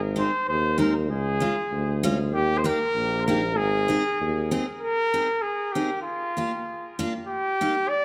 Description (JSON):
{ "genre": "alpine folk, alpine dance band", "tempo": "97 BPM", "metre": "2/4", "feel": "straight", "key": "Ab major", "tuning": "A4 = 436 Hz", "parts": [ { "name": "warm tuba", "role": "bass", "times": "0.0-4.6 s", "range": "Ab1 to Eb2", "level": "-29 LUFS", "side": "equal", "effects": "none" }, { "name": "warm trumpet", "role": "melody", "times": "0.2-8.0 s", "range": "F4 to D5", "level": "-28 LUFS", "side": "equal", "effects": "tape echo" }, { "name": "picked steel-string acoustic guitar", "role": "accompaniment", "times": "0.2-7.7 s", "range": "Ab3 to Ab4", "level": "-30 LUFS", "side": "equal", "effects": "none" } ], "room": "light reverb", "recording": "none", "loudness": "-25 LUFS", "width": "mono", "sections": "0.0-4.8 A section; 4.8-8.0 B section", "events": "none", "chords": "0.0 Ab; 1.1 Db; 2.3 Eb; 3.6 Ab; 6.1 Bb; 7.3 Eb" }